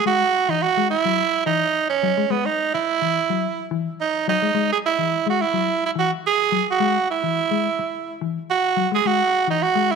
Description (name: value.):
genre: afrobeat.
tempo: 107 BPM.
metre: 4/4.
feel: swing 54% on 16ths.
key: unclear.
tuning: A4 = 440 Hz.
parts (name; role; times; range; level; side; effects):
growling tenor saxophone; melody; 0.0-10.0 s; B3 to G#4; -19 LUFS; right 6 dB; none.
mellow electric guitar; arpeggios; 0.1-9.9 s; E3 to G#3; -25 LUFS; left 12 dB; none.
room: moderate echo chamber reverb, RT60 1.9 s.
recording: 1960s-style stereo with parts hard left and right.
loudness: -18 LUFS.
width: side -5 dB against mid.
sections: 0.0-10.0 A section.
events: none.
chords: 0.0 Emaj9; 2.9 Esus2; 4.0 Eadd9.